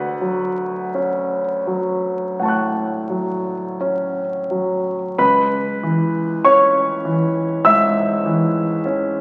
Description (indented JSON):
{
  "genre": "classical, impressionist solo piano",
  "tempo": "40-50 BPM",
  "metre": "4/4",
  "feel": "rubato",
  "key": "unclear",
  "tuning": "A4 = 439 Hz",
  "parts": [
    { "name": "clear grand piano", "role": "solo", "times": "0.0-9.2 s", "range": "C#2 to F#6", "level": "-19 LUFS", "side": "equal", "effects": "none" }
  ],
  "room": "wet concert hall reverb, RT60 1.8 s",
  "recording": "very old 78 rpm record, vinyl crackle",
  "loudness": "-19 LUFS",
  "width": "mono",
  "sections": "0.0-5.2 A section; 5.2-9.2 B section",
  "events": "none",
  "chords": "0.0 Dmaj7; 5.2 C#m7"
}